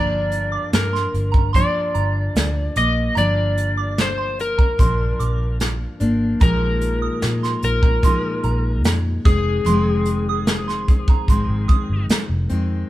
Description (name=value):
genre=indie pop, bedroom pop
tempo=74 BPM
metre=4/4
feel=straight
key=F dorian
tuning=A4 = 440 Hz
part: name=electric slide guitar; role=melody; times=0.0-12.1 s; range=Ab4 to Eb5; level=-24 LUFS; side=left 2 dB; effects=none
part: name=soft synth bell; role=second line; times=0.0-11.9 s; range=Bb5 to Eb6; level=-28 LUFS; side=right 8 dB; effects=chorus
part: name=picked steel-string acoustic guitar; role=accompaniment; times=0.0-12.9 s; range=F2 to Eb4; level=-24 LUFS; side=left 1 dB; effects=vibrato effect
part: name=vintage muted fingered electric bass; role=bass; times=0.0-12.8 s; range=F1 to Bb2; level=-22 LUFS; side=equal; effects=none
part: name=soft brush drum kit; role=drums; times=0.3-12.7 s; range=hi-hat, kick drum, snare drum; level=-18 LUFS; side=equal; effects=none
room=light reverb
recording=band playing live in one room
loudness=-17 LUFS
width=side -15 dB against mid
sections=0.0-12.9 A section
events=none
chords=0.0 Gm7; 6.4 Bb7sus4; 9.3 Fm7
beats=0.73 1.54 2.35 | 3.16 3.98 4.79 5.60 | 6.41 7.22 8.04 8.85 | 9.66 10.47 11.28 12.09